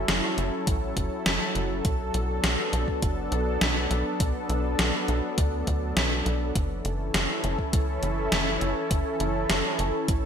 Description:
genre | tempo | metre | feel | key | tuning
synthwave | 102 BPM | 4/4 | straight | B minor | A4 = 440 Hz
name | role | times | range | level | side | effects
lush unison pad | sustained chords | 0.0-10.3 s | E3 to A4 | -29 LUFS | equal | chorus, sidechain pumping, shimmer reverb
tight sequencer bass | bass | 0.0-10.3 s | F#1 to D2 | -29 LUFS | equal | sidechain pumping
gated 80s digital drum machine | drums | 0.1-10.2 s | hi-hat, snare drum | -27 LUFS | equal | gated reverb, gated reverb snare, overdrive
electronic kick drum | drums | 0.7-10.2 s | none | -27 LUFS | equal | overdrive
room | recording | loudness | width
moderate lush hall reverb, RT60 1.6 s | bright 1980s-style digital production | -24 LUFS | side -8 dB against mid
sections
0.0-10.3 A section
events
none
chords
0.0 F#m7; 1.8 Bm7; 6.6 F#m7

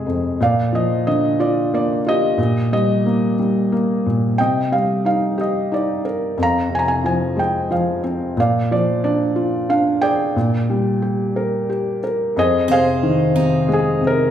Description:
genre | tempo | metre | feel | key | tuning
acoustic folk-pop ballad | 90 BPM | 3/4 | straight | unclear | A4 = 440 Hz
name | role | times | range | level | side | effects
felt-muted upright piano | melody | 0.0-14.3 s | F2 to Bb5 | -16 LUFS | equal | none
picked steel-string acoustic guitar | arpeggios | 12.7-14.3 s | Eb4 to C5 | -23 LUFS | right 4 dB | none
room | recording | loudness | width
wet large studio reverb, RT60 1.3 s | heard from further back in the room | -16 LUFS | side -10 dB against mid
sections
0.0-12.4 A section; 12.4-14.3 B section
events
none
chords
0.4 Bb; 2.4 Eb/Bb; 4.4 Cm; 6.4 Fm; 8.4 Bb; 10.4 Bb6; 12.4 Fm7

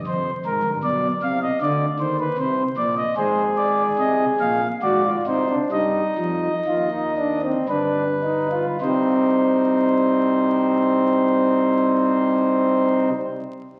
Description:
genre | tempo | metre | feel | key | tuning
classical, baroque-style 3-part fugue for pipe organ | 51-78 BPM | 3/4 | straight | C minor from 3.2 s | A4 = 440 Hz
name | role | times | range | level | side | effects
pipe organ, principal | solo | 0.0-13.1 s | F1 to F5 | -21 LUFS | equal | none
room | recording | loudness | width
wet recital hall reverb, RT60 1.6 s | very old 78 rpm record, vinyl crackle | -21 LUFS | mono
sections
0.0-8.8 A section; 8.8-12.3 B section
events
slowing down 2.0-8.8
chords
0.1 Fmadd9; 0.8 Bm; 2.4 Cm; 3.2 Fm/Ab; 4.8 Ab7; 5.7 Cm (rootless); 7.7 G7; 8.8 Cm

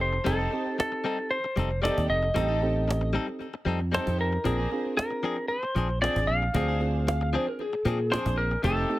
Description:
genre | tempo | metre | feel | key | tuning
straight-eighth soul blues | 115 BPM | 4/4 | swing 54% on 16ths | unclear | A4 = 442 Hz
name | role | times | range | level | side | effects
clean lap steel guitar | melody | 0.0-9.0 s | A4 to F5 | -29 LUFS | equal | none
bright reed electric piano | accompaniment | 0.0-9.0 s | A3 to C5 | -33 LUFS | right 3 dB | overdrive
direct-recorded clean electric guitar | stabs | 0.0-8.9 s | Eb3 to A4 | -33 LUFS | left 4 dB | digital delay
fingered electric bass | bass | 0.0-8.8 s | F1 to Bb2 | -28 LUFS | equal | none
cajon | drums | 0.0-9.0 s | none | -33 LUFS | equal | none
dark symphonic string section | sustained chords | 0.2-9.0 s | D4 to D5 | -38 LUFS | right 1 dB | none
electric guitar through a small old amp | second line | 7.1-8.1 s | Ab4 to F5 | -30 LUFS | left 1 dB | none
room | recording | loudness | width
light reverb | none | -25 LUFS | side -16 dB against mid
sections
0.0-9.0 A section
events
none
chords
0.0 F9; 4.5 Bb9

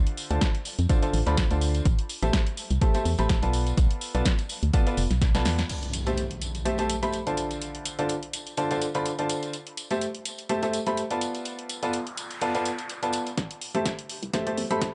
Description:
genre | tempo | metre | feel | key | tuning
piano house | 125 BPM | 4/4 | swing 55% on 16ths | A minor | A4 = 440 Hz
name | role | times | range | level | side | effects
bright baby grand piano | riff | 0.0-14.8 s | D3 to B5 | -31 LUFS | equal | sidechain pumping, low-pass filter, dub echo
organ-like FM bass | bass | 0.0-5.6, 13.4-14.9 s | F1 to F2 | -28 LUFS | equal | sidechain pumping, high-pass filter
punchy analog drum machine | drums | 0.1-14.9 s | crash cymbal, hi-hat, snare drum | -35 LUFS | equal | high-pass filter on hats, high-pass filter on snare, high-pass filter on cymbals
tambourine | percussion | 0.2-13.4 s | none | -42 LUFS | equal | none
electronic kick drum | drums | 0.4-5.3, 13.4-14.9 s | none | -26 LUFS | equal | high-pass filter on kick
impact, noise sweep and riser | sound effects | 5.7-7.6, 11.8-14.9 s | none | -38 LUFS | equal | none
room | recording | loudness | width
light reverb | nothing above 10.5 kHz | -27 LUFS | mono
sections
0.0-5.7 A section; 5.7-13.4 B section; 13.4-14.9 C section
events
drum fill 5.2-5.7, 13.4-14.9; band accent 5.6; impact 5.7-7.6; noise sweep 11.8-13.4; build-up 13.4-14.9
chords
0.0 Dm7; 1.9 Am7; 3.5 Bm7b5; 5.7 Am7; 7.4 Dm7; 9.5 Am7; 11.2 Bm7b5; 13.4 Am7

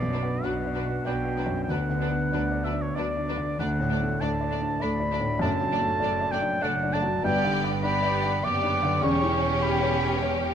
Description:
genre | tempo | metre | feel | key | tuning
classical | 98 BPM | 3/4 | uneven beats, rubato | B minor | A4 = 440 Hz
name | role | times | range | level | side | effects
warm baby grand piano | melody | 0.0-10.5 s | B1 to D5 | -29 LUFS | left 1 dB | none
warm oboe | second line | 0.0-10.2 s | C#5 to D6 | -29 LUFS | right 1 dB | none
mellow French horn section | sustained chords | 0.0-9.2 s | G3 to D4 | -34 LUFS | left 3 dB | none
rich symphonic cello section | bass | 0.0-10.5 s | D2 to B2 | -34 LUFS | right 1 dB | none
warm symphonic double bass section | bass | 0.0-10.5 s | E1 to D2 | -34 LUFS | right 4 dB | none
warm symphonic violin section | melody | 0.1-10.5 s | B4 to D5 | -38 LUFS | left 4 dB | none
rich symphonic violin section | second line | 0.1-10.5 s | D4 to G4 | -34 LUFS | right 1 dB | none
rich symphonic viola section | accompaniment | 0.1-10.5 s | F#3 to C#4 | -35 LUFS | equal | none
timpani | percussion | 5.4-6.3 s | F#2 | -37 LUFS | equal | none
room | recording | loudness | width
light reverb | close, detailed microphones | -23 LUFS | side -8 dB against mid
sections
0.0-10.5 A section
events
none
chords
0.0 Bm; 1.7 Bm/D; 3.6 D; 5.4 D/F#; 7.2 G; 9.0 C#dim/E

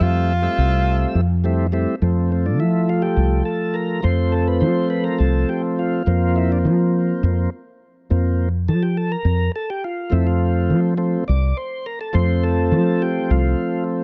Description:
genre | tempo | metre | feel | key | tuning
progressive instrumental, band music in an uneven meter | 208 BPM (eighths) | 7/8 | straight | F major | A4 = 440 Hz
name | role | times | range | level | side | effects
breathy tenor saxophone | melody | 0.0-1.5 s | F4 | -26 LUFS | equal | none
tonewheel organ | accompaniment | 0.0-14.0 s | F3 to E5 | -23 LUFS | equal | slow rotary speaker
woody fretless electric bass | bass | 0.0-13.5 s | C2 to F3 | -20 LUFS | equal | ensemble chorus
room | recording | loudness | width
small room ambience | dry, close 1970s-style studio recording | -19 LUFS | mono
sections
0.0-2.0 A section; 2.0-14.0 B section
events
tonewheel organ solo 2.0-14.0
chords
0.0 Fmaj7; 2.0 F; 6.1 Bbsus2/F; 10.1 F

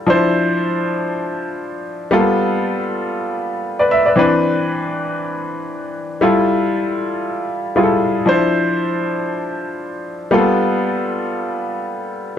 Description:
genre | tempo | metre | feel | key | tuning
disco | free time | none | none | unclear | A4 = 440 Hz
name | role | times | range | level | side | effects
clear grand piano | solo | 0.0-12.4 s | E3 to E5 | -16 LUFS | left 1 dB | none
room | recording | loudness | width
light reverb | none | -16 LUFS | side -9 dB against mid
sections
0.0-12.4 A section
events
none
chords
0.1 Dm9; 2.1 G9; 4.2 Cmaj9; 6.2 Fmaj9; 8.3 Dm9; 10.3 G9

